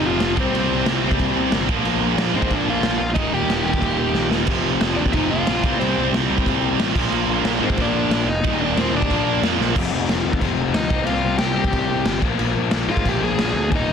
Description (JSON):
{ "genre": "punk rock", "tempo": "182 BPM", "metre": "4/4", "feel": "straight", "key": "unclear", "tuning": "A4 = 440 Hz", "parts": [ { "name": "overdriven electric guitar", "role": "melody", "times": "0.0-13.9 s", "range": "C4 to Ab5", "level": "-25 LUFS", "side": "left 2 dB", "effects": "tape echo" }, { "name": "distorted electric guitar", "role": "riff", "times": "0.0-13.9 s", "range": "Eb2 to C4", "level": "-24 LUFS", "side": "left 15 dB", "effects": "distortion" }, { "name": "tight distorted guitar", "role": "riff", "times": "0.0-9.8 s", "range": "Eb2 to C4", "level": "-23 LUFS", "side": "right 17 dB", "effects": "distortion" }, { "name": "fuzz picked electric bass", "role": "bass", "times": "0.0-13.9 s", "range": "Eb1 to Ab2", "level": "-25 LUFS", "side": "equal", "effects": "overdrive" }, { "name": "raw garage drum kit", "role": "drums", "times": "0.2-13.8 s", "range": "crash cymbal, kick drum, snare drum", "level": "-23 LUFS", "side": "equal", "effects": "none" } ], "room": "little or no reverb", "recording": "dense, heavily limited modern master", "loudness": "-17 LUFS", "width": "side -7 dB against mid", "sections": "0.0-9.8 A section; 9.8-13.9 A section", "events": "drum fill 4.2-4.5, 9.6", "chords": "0.4 C5; 1.7 Bb5; 3.2 Eb; 4.5 F5; 5.6 C5; 7.0 Bb; 8.4 Eb5; 9.1 Bb; 9.8 F5; 10.9 Cm; 12.2 Bb5", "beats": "0.21 | 0.54 0.86 1.19 1.52 | 1.85 2.18 2.51 2.84 | 3.17 3.50 3.83 4.15 | 4.48 4.81 5.14 5.47 | 5.80 6.13 6.46 6.79 | 7.12 7.45 7.78 8.10 | 8.43 8.76 9.09 9.42 | 9.75 10.08 10.41 10.74 | 11.07 11.40 11.73 12.06 | 12.39 12.72 13.05 13.38 | 13.71" }